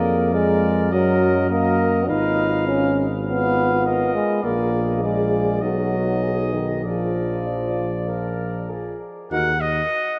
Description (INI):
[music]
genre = classical, brass quintet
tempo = 100 BPM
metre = 4/4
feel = uneven beats, rubato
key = Eb minor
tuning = A4 = 440 Hz
[part]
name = clear trumpet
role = melody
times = 0.0-10.2 s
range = D5 to Gb5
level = -30 LUFS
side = equal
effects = none
[part]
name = mellow flugelhorn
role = second line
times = 0.0-9.5 s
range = F#4 to D5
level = -32 LUFS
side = equal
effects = none
[part]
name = mellow French horn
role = accompaniment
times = 0.0-9.5 s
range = D#4 to Ab4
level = -32 LUFS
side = equal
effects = none
[part]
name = warm euphonium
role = accompaniment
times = 0.0-9.5 s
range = D#3 to Eb4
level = -25 LUFS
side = equal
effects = none
[part]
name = warm tuba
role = bass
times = 0.0-9.8 s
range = Ab1 to Gb2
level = -26 LUFS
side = equal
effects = none
[sound]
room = wet cathedral reverb, RT60 5.4 s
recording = in a vast, echoing space, nothing above 10.3 kHz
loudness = -21 LUFS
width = mono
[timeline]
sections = 0.0-9.3 A section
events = none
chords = 0.0 Bb7/F; 0.9 Ebm/Gb; 2.1 Fm7b5/Ab; 4.4 Bb7; 5.6 B; 6.8 Bb; 9.3 Ebm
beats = 0.35 0.93 1.51 | 2.09 2.68 3.27 3.86 | 4.44 5.03 5.62 6.23 | 6.84 7.46 8.08 8.70 | 9.32 9.92